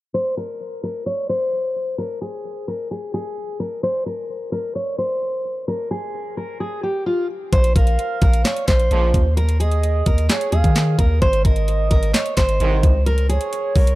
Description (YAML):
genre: hip hop, trap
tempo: 130 BPM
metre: 4/4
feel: half-time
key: Bb minor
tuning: A4 = 439 Hz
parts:
  - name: fingerpicked steel-string acoustic guitar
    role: melody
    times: 0.1-14.0 s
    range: F4 to Db5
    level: -23 LUFS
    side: left 1 dB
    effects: ping-pong delay
  - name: long sustained 808-style bass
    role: bass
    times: 7.5-14.0 s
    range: Ab1 to Eb3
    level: -18 LUFS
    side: equal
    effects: none
  - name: trap drum kit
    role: drums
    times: 7.5-14.0 s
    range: handclaps, hi-hat, kick drum, snare drum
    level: -18 LUFS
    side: equal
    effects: none
  - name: gliding portamento lead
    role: second line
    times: 7.8-13.9 s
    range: Db5 to F5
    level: -26 LUFS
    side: right 4 dB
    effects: chorus, ping-pong delay
  - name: warm brass ensemble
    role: stabs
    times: 8.9-9.2, 12.6-12.9 s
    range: C2 to F3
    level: -27 LUFS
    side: right 5 dB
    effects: none
room: digital ambience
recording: dark, warm production, low-pass filter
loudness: -17 LUFS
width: side -18 dB against mid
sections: 0.1-7.5 A section; 7.5-14.0 B section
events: filter sweep 0.1-7.5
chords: 0.1 N.C.; 7.5 Bbm; 9.4 Ebsus4; 11.2 Ab; 13.1 Db5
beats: | 0.14 0.60 1.06 1.53 | 1.99 2.45 2.91 3.37 | 3.83 4.29 4.76 5.22 | 5.68 6.14 6.60 7.06 | 7.53 7.99 8.45 8.91 | 9.37 9.83 10.29 10.76 | 11.22 11.68 12.14 12.60 | 13.06 13.53